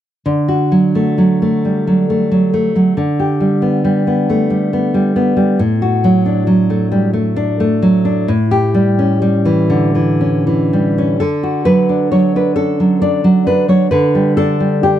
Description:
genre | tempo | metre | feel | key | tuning
romantic piece for solo classical guitar | 39-46 BPM (dotted quarters) | 6/8 | rubato | D major | A4 = 440 Hz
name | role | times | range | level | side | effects
nylon-string guitar | solo | 0.3-15.0 s | A2 to D5 | -11 LUFS | equal | none
room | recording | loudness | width
light reverb | dry, close 1970s-style studio recording | -12 LUFS | side -11 dB against mid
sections
0.3-11.2 A section; 11.2-15.0 B section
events
none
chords
0.3 D; 3.0 G/D; 5.6 D/A; 8.3 A7; 11.2 D; 13.9 G5/D

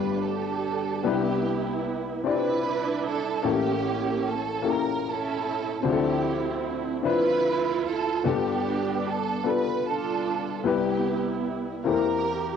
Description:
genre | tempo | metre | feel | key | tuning
gospel | 50 BPM (dotted quarters) | 6/8 | straight | C major | A4 = 440 Hz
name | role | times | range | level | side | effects
warm studio string section | melody | 0.0-12.6 s | A3 to B4 | -27 LUFS | right 6 dB | cassette tape
warm baby grand piano | accompaniment | 0.0-12.6 s | G1 to Bb5 | -27 LUFS | left 8 dB | cassette tape
room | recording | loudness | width
moderate small room reverb, RT60 0.5 s | home recording on cassette | -24 LUFS | side -7 dB against mid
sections
0.0-1.0 A section; 1.0-12.6 B section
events
none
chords
0.0 G; 1.0 Cmaj9; 3.4 A7b9; 5.8 Dm9; 8.2 G9; 10.7 Cmaj7; 11.9 C7/E

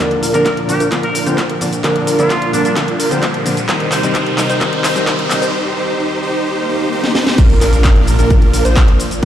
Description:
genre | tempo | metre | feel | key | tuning
EDM, festival progressive house | 130 BPM | 4/4 | straight | unclear | A4 = 435 Hz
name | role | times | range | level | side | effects
clear grand piano | accompaniment | 0.0-5.5 s | D3 to G4 | -20 LUFS | left 1 dB | sidechain pumping, tape echo
lush unison pad | sustained chords | 0.0-9.2 s | Bb2 to Eb4 | -26 LUFS | right 1 dB | chorus, phaser, sidechain pumping
plucky unison lead | arpeggios | 0.0-9.2 s | Bb4 to C5 | -21 LUFS | right 1 dB | sidechain pumping, tape echo
supersaw chords | riff | 0.0-9.2 s | D4 to C5 | -20 LUFS | right 1 dB | sidechain pumping, low-pass filter, tape echo
electronic kick drum | drums | 0.0-9.2 s | none | -14 LUFS | equal | overdrive, high-pass filter on kick, high-pass filter on room
house drum kit | drums | 0.0-9.2 s | crash cymbal, handclaps, hi-hat, shaker, snare drum | -20 LUFS | equal | overdrive
riser, swell and impact | sound effects | 1.5-9.2 s | none | -25 LUFS | equal | none
trumpet with straight mute | melody | 0.3-2.7 s | D4 to Bb4 | -24 LUFS | equal | tape echo
wide detuned saw bass | bass | 7.4-9.2 s | Bb1 | -14 LUFS | equal | chorus, sidechain pumping
room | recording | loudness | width
light reverb, digital ambience | played on a big sound system in a bare room, large studio reverb | -12 LUFS | side -10 dB against mid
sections
0.0-7.4 A section; 7.4-9.2 B section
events
build-up 0.0-7.4; drum fill 0.0-5.5, 7.0-7.4; filter sweep on supersaw synth 0.0-7.4; filter sweep on digital synth lead 0.0-7.4; riser 1.5-5.5; swell 6.6-7.4; drop 7.4-9.2; impact 7.4-9.2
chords
0.0 Bb; 3.7 Cm; 7.4 Bb

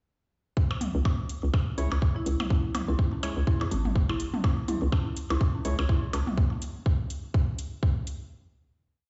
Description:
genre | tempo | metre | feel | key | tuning
minimal techno | 124 BPM | 4/4 | swing 57% on 16ths | C# minor | A4 = 440 Hz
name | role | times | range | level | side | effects
electronic kick drum | drums | 0.6-7.9 s | none | -28 LUFS | equal | none
electronic percussion blips and toms | percussion | 0.7-6.4 s | none | -37 LUFS | equal | overdrive, delay
electronic hi-hat | drums | 0.8-8.2 s | none | -46 LUFS | equal | none
hollow knocking FM bass | bass | 0.9-6.2 s | G#1 to E2 | -29 LUFS | equal | sidechain pumping
percussive organ stab | stabs | 1.8-5.8 s | G#3 to C#5 | -42 LUFS | equal | chorus, delay
marimba with medium mallets | melody | 2.2-2.4 s | E4 | -41 LUFS | equal | delay
dark detuned synth bell | riff | 2.5-6.2 s | C#4 to E4 | -38 LUFS | equal | chorus, sidechain pumping, delay
room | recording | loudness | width
light reverb, digital ambience | played on a big sound system in a bare room, large studio reverb, nothing above 7.8 kHz | -28 LUFS | mono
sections
0.6-8.3 groove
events
none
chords
0.6 C#m

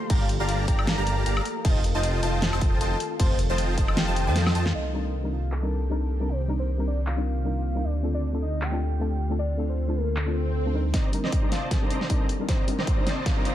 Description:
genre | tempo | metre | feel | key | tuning
future bass | 155 BPM | 4/4 | swing 56% on 16ths, half-time | unclear | A4 = 440 Hz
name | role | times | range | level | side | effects
warm velvety synth lead | melody | 0.0-13.5 s | A4 to C6 | -34 LUFS | left 1 dB | chorus, tremolo, cassette tape, sidechain pumping, ping-pong delay
ethereal airy pad | sustained chords | 0.0-13.5 s | D3 to G4 | -38 LUFS | right 1 dB | ensemble chorus, built-in reverb, sidechain pumping
concert harp | arpeggios | 0.0-6.7 s | F4 to C6 | -38 LUFS | left 3 dB | sidechain pumping, ping-pong delay
wide unison pluck | arpeggios | 0.1-4.7 s | A5 to Bb5 | -37 LUFS | equal | sidechain pumping, ping-pong delay
dense compressed supersaw | riff | 0.1-4.7, 10.9-13.5 s | C4 to Bb5 | -31 LUFS | right 1 dB | cassette tape, sidechain pumping, low-pass filter
wide detuned saw bass | bass | 0.1-10.9 s | F1 to F2 | -26 LUFS | equal | chorus, sidechain pumping
big-room dance drum kit | drums | 0.1-13.5 s | crash cymbal, handclaps, hi-hat, snare drum, woodblock | -31 LUFS | equal | low-pass filter on hats, small room reverb, low-pass filter on cymbals, low-pass filter on snare, low-pass filter on perc
electronic kick drum | drums | 0.1-3.9, 10.9-13.3 s | none | -24 LUFS | equal | small room reverb
soft round pluck | accompaniment | 4.9-13.5 s | G3 to Bb4 | -32 LUFS | left 2 dB | analog chorus, cassette tape, sidechain pumping
swell and riser | sound effects | 10.3-13.5 s | none | -38 LUFS | equal | none
room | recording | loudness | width
little or no reverb | none | -23 LUFS | side -12 dB against mid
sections
0.0-4.7 A section; 4.7-10.9 B section; 10.9-13.5 C section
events
drop 0.0-4.7; drum fill 4.4-4.7, 10.9-13.5; band accent 4.6; swell 10.3-10.9; build-up 10.9-13.5; riser 10.9-13.5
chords
0.0 Gm9; 1.6 F7; 4.7 Cm7; 7.8 Dm7; 10.9 Cm7

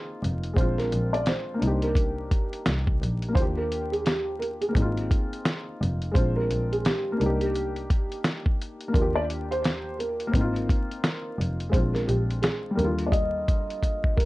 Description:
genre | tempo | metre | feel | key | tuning
lo-fi hip hop | 86 BPM | 4/4 | swing 61% on 16ths | Eb major | A4 = 440 Hz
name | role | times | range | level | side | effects
felt-muted upright piano | melody | 0.0-14.3 s | G4 to Eb5 | -30 LUFS | right 1 dB | low-pass filter, plate reverb
dark upright piano | accompaniment | 0.0-14.3 s | D3 to G4 | -31 LUFS | left 2 dB | cassette tape, low-pass filter, plate reverb
rich double bass | bass | 0.2-13.4 s | F1 to Eb2 | -28 LUFS | equal | none
lo-fi sampler-style drum kit | drums | 0.2-14.3 s | hi-hat, kick drum, snare drum | -25 LUFS | equal | none
room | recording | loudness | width
light reverb | vinyl crackle, nothing above 10.7 kHz | -23 LUFS | side -19 dB against mid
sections
0.0-14.3 A section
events
drum fill 13.8-14.3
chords
0.0 Ab69 (rootless); 0.6 Bb9; 1.6 Cm7; 3.4 Ebmaj7; 4.8 Ab69; 6.2 Bb9; 7.2 Cm7; 8.9 Ebmaj7; 10.3 Ab69; 11.7 Bb9; 12.8 Ebmaj7

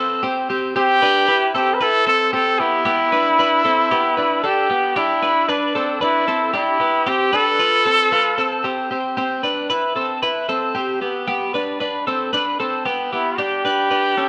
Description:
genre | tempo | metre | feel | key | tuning
indie pop | 114 BPM | 4/4 | straight | unclear | A4 = 439 Hz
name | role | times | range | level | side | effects
twelve-string electric guitar | arpeggios | 0.0-14.3 s | B3 to B4 | -22 LUFS | equal | spring reverb
breathy trumpet | melody | 0.8-8.9, 13.1-14.3 s | D4 to B4 | -19 LUFS | equal | none
room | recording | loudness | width
moderate large studio reverb, RT60 1.2 s | band playing live in one room | -19 LUFS | mono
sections
0.0-5.0 A section; 5.0-13.4 B section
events
none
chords
0.5 C6; 2.9 Dsus4; 7.1 Fadd9; 8.9 C6; 11.3 Am11/B; 13.4 Dsus4

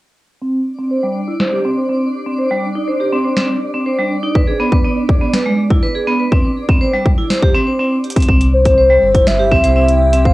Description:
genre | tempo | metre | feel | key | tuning
IDM | 122 BPM | 4/4 | straight | C major | A4 = 440 Hz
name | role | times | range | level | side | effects
vibraphone with hard mallets | arpeggios | 0.4-10.3 s | G3 to C5 | -16 LUFS | right 1 dB | vintage 12-bit sampler grit, low-pass filter, cassette tape, tape echo
twinkling granular texture | texture | 0.9-8.3 s | D4 to D5 | -26 LUFS | left 1 dB | built-in reverb, cassette tape
booming analog drum machine | drums | 1.4-10.2 s | hi-hat, snare drum | -20 LUFS | equal | low-pass filter on snare, low-pass filter on hats, low-pass filter on room
electronic kick drum | drums | 4.4-10.3 s | none | -14 LUFS | equal | none
icy glass pad | sustained chords | 8.9-10.3 s | C3 to G5 | -25 LUFS | equal | chorus, built-in reverb, sidechain pumping, cassette tape
warm sub bass | bass | 8.3-10.3 s | G1 to C2 | -15 LUFS | equal | none
warbly nostalgic lead | melody | 8.5-10.3 s | C5 to F5 | -12 LUFS | left 1 dB | chorus, tremolo, cassette tape
room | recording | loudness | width
moderate studio ambience, RT60 0.5 s | home recording on cassette | -12 LUFS | side -18 dB against mid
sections
0.4-8.3 A section; 8.3-10.3 B section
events
filter sweep on drum 0.4-8.3; filter sweep on vibraphone 0.4-8.3; drum fill 8.0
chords
0.4 N.C.; 2.4 Gsus4; 4.4 E (rootless); 6.3 Gsus4 (rootless)

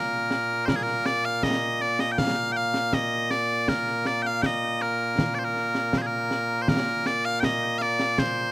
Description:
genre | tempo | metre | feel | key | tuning
scottish traditional, Scottish pipe music | 80 BPM | 2/4 | straight | Bb major | A4 = 440 Hz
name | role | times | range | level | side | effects
loud bright bagpipes | melody | 0.0-8.5 s | Bb2 to G5 | -24 LUFS | equal | none
concert snare drum and concert bass drum | drums | 0.3-8.4 s | none | -28 LUFS | equal | none
room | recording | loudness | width
little or no reverb | recorded outdoors, with no room sound | -22 LUFS | side -21 dB against mid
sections
0.0-6.7 A section; 6.7-8.5 A section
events
none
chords
none

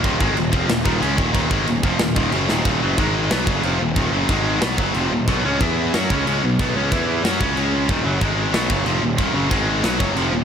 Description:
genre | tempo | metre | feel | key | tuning
heavy metal | 184 BPM | 4/4 | straight | Eb minor | A4 = 441 Hz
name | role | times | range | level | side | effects
heavy high-gain guitar | riff | 0.0-10.4 s | Eb2 to F#4 | -20 LUFS | equal | distortion, slapback echo
fuzz picked electric bass | bass | 0.0-10.4 s | Eb1 to F#2 | -24 LUFS | equal | overdrive
tight metal drum kit | drums | 0.0-10.2 s | china cymbal, kick drum, snare drum | -23 LUFS | equal | none
room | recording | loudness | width
moderate lush hall reverb, RT60 1.9 s, small room reverb | big arena sound | -17 LUFS | side -8 dB against mid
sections
0.0-2.7 A section; 2.7-10.4 B section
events
drum fill 2.5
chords
0.0 Ebm; 3.0 Ab5; 3.3 Ebm; 4.3 Ab5; 4.6 Ebm; 5.3 B5; 5.6 E5; 5.9 B5; 6.9 E5; 7.2 Dbsus4; 7.6 Db5; 7.9 Ebm; 8.2 Ab5; 8.5 Ebm; 9.5 Ab5; 9.8 Ebm

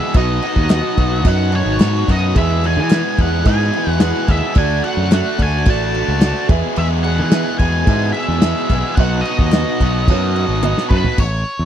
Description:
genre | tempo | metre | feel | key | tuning
classic rock | 109 BPM | 4/4 | straight | E major | A4 = 439 Hz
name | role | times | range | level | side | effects
octave-fuzz lead guitar | melody | 0.0-11.7 s | B4 to A5 | -23 LUFS | equal | wah, distortion, slapback echo
dark upright piano | accompaniment | 0.0-11.1 s | F#4 to F#5 | -26 LUFS | right 15 dB | none
ensemble organ-string | sustained chords | 0.0-11.2 s | F#3 to E5 | -26 LUFS | equal | ensemble chorus
tight distorted guitar | riff | 0.0-11.2 s | E2 to G#4 | -21 LUFS | left 1 dB | distortion
growling fingered electric bass | bass | 0.1-11.7 s | G#1 to E3 | -18 LUFS | equal | overdrive
damped 70s drum kit | drums | 0.1-11.3 s | crash cymbal, kick drum, snare drum, toms | -15 LUFS | equal | none
group handclap | percussion | 0.7-10.8 s | none | -33 LUFS | left 21 dB | none
room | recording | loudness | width
little or no reverb | dry, close 1970s-style studio recording | -13 LUFS | side -10 dB against mid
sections
0.0-11.2 A section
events
drum fill 10.6-11.2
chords
0.2 B; 2.4 E; 4.6 D; 6.5 E; 9.0 B

